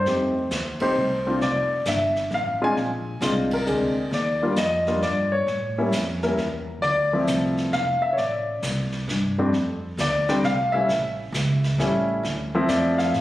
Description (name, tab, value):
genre	jazz piano trio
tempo	133 BPM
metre	3/4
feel	swing 66% on 8ths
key	D minor, F major from 9.5 s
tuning	A4 = 441 Hz
part	warm concert grand piano	melody	0.0-13.2 s	F2 to G#5	-22 LUFS	left 1 dB	plate reverb
part	upright bass	bass	0.0-13.2 s	F1 to A2	-28 LUFS	equal	none
part	jazz brush drum kit	drums	0.1-13.2 s	brushed snare drum, hi-hat, kick drum, ride cymbal, snare drum	-33 LUFS	right 1 dB	none
room	moderate large studio reverb, RT60 1.0 s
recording	recorded on a phone in the room, studio reverb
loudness	-21 LUFS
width	side -15 dB against mid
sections	0.0-9.5 A section; 9.5-13.2 B section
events	band accent 0.7, 3.4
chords	0.1 F9; 1.4 Fmaj13; 2.8 Bb9; 4.1 Ebmaj7; 5.5 A(b9); 6.8 Dm9; 9.5 F6; 10.9 A7; 12.2 Dm7